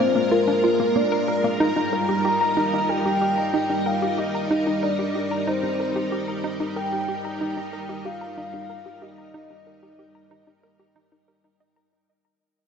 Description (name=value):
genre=ambient, sequencer-driven space music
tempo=93 BPM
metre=4/4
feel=straight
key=Eb major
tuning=A4 = 440 Hz
part: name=soft octave-layered synth lead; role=melody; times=0.0-11.3 s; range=Bb4 to Bb5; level=-25 LUFS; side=left 1 dB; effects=chorus, phaser, analog delay
part: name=string machine, full ensemble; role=sustained chords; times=0.0-11.9 s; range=G3 to Bb4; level=-26 LUFS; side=right 1 dB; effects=ensemble chorus
part: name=hollow square pluck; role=riff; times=0.0-11.9 s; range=Bb3 to Bb5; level=-26 LUFS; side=right 1 dB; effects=chorus, analog delay
room=wet lush hall reverb, RT60 2.8 s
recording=dreamy mix soaked in reverb, nothing above 7.9 kHz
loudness=-21 LUFS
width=side -7 dB against mid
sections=0.0-11.9 A section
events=filter sweep on synth arpeggio sound 0.0-11.9; fade-out 1.6-11.9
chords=0.0 Bb7; 1.6 Eb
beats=0.31 0.96 | 1.60 2.25 2.89 3.54 | 4.18 4.83 5.47 6.12 | 6.76 7.41 8.05 8.70 | 9.35 9.99 10.64 11.28